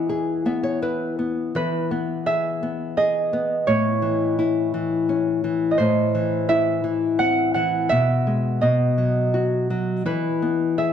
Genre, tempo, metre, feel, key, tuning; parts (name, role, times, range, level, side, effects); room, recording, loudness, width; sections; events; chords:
children's music, lullaby; 84 BPM; 3/4; straight; E major; A4 = 440 Hz
concert harp; melody; 0.0-10.9 s; B4 to F#5; -23 LUFS; right 4 dB
nylon-string guitar; accompaniment; 0.0-10.9 s; A2 to E5; -21 LUFS; left 3 dB
moderate recital hall reverb, RT60 1.5 s; dark, warm production; -19 LUFS; side -8 dB against mid
0.0-1.5 A section; 1.5-10.9 A section
nylon-string guitar fill 0.1-1.5
0.0 E; 3.7 A; 5.8 Am; 7.9 E/B; 8.6 B; 10.1 E